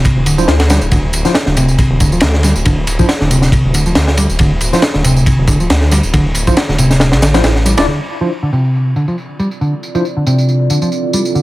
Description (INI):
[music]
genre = breakbeat, breaks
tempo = 138 BPM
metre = 4/4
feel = swing 54% on 16ths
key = D minor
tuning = A4 = 439 Hz
[part]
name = vintage muted picked electric bass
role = riff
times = 0.0-11.4 s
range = C3 to G3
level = -14 LUFS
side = equal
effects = vintage 12-bit sampler grit, low-pass filter, tape echo
[part]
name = tambourine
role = drums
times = 0.0-11.4 s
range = none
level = -24 LUFS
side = right 1 dB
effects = overdrive, low-pass filter on perc, low-pass filter on room
[part]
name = crunchy breakbeat drum kit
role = drums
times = 0.1-7.9 s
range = kick drum, ride cymbal, snare drum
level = -14 LUFS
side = equal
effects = none
[part]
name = detuned saw bass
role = bass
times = 0.2-7.9 s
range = D1 to D2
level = -15 LUFS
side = equal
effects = none
[part]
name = bright tine electric piano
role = stabs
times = 0.4-10.0 s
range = D4 to D5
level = -20 LUFS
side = equal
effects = medium stereo tremolo, vintage 12-bit sampler grit, low-pass filter, tape echo
[part]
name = dark analog pad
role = sustained chords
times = 9.4-11.4 s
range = C4 to D5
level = -19 LUFS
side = right 2 dB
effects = chorus, phaser, sidechain pumping
[sound]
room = small room ambience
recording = none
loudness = -10 LUFS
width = side -18 dB against mid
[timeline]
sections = 0.0-7.9 A section; 7.9-11.4 B section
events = none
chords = 0.0 Dm7; 7.9 Dm9